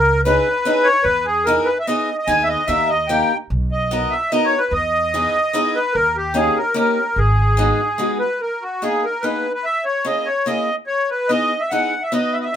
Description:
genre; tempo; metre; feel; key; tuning
musette waltz; 146 BPM; 3/4; straight; G# minor; A4 = 440 Hz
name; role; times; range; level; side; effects
accordion; melody; 0.0-12.6 s; F#4 to G#5; -18 LUFS; equal; light tremolo tuning
upright bass; bass; 0.0-7.7 s; G#1 to E2; -22 LUFS; equal; none
picked acoustic archtop guitar; accompaniment; 0.3-12.5 s; G#3 to B4; -21 LUFS; left 1 dB; none
room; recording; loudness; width
light reverb; minimal, uncompressed stereo recording; -16 LUFS; side -9 dB against mid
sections
0.0-8.4 A section; 8.4-12.6 A section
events
none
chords
0.0 C#madd9; 1.1 Emaj7; 2.3 G#m/D#; 2.7 D#; 3.5 Bmaj7; 4.7 Emaj7; 6.0 D#7; 7.2 G#m7; 8.4 G#madd9; 9.7 A#m7b5; 10.9 Emaj7; 12.1 B

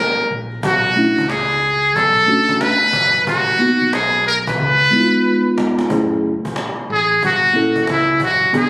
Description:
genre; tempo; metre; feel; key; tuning
hip hop, jazz-hop; 91 BPM; 4/4; swing 64% on 16ths; F# dorian; A4 = 441 Hz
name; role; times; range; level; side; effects
trumpet with metal mute; melody; 0.0-8.7 s; E4 to B4; -14 LUFS; equal; none
deep dub fingered electric bass; bass; 0.3-8.7 s; E#1 to C#2; -26 LUFS; equal; none
cajon; drums; 0.3-8.7 s; none; -24 LUFS; equal; none
mellow tine electric piano; accompaniment; 1.0-8.7 s; G#3 to A4; -17 LUFS; equal; medium stereo tremolo
room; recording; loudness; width
light reverb, studio reverb; recorded on a phone in the room; -13 LUFS; side -22 dB against mid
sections
0.0-5.9 A section; 5.9-8.7 B section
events
drum fill 4.6-5.9; muted trumpet solo 5.9-8.7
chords
0.0 N.C.; 0.6 Bm9; 3.3 G#m7; 4.6 C#7; 5.9 F#m9; 7.2 Gdim7

